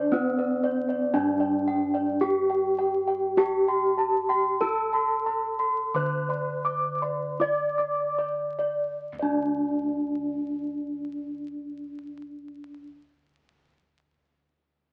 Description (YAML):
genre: Javanese gamelan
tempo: 36-62 BPM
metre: 4/4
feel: straight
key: unclear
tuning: A4 = 440 Hz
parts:
  - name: gamelan-type bronze metallophone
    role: melody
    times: 0.0-12.9 s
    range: C4-40c to D5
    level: -29 LUFS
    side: equal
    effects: none
  - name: gamelan-type bossed gongs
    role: arpeggios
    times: 0.0-12.9 s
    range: C5-40c to D6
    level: -33 LUFS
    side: equal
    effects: none
  - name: gamelan-type bronze metallophone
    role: arpeggios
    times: 0.0-12.9 s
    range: C5-40c to D6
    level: -34 LUFS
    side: equal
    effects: none
  - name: gamelan-type bossed gongs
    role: bass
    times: 0.0-12.8 s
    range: D2 to G4-20c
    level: -35 LUFS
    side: equal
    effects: none
room: moderate club reverb, RT60 0.9 s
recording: very old 78 rpm record, vinyl crackle, nothing above 10.5 kHz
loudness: -26 LUFS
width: mono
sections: 0.0-9.0 A section; 9.0-14.9 B section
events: slowing down 0.0-9.0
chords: none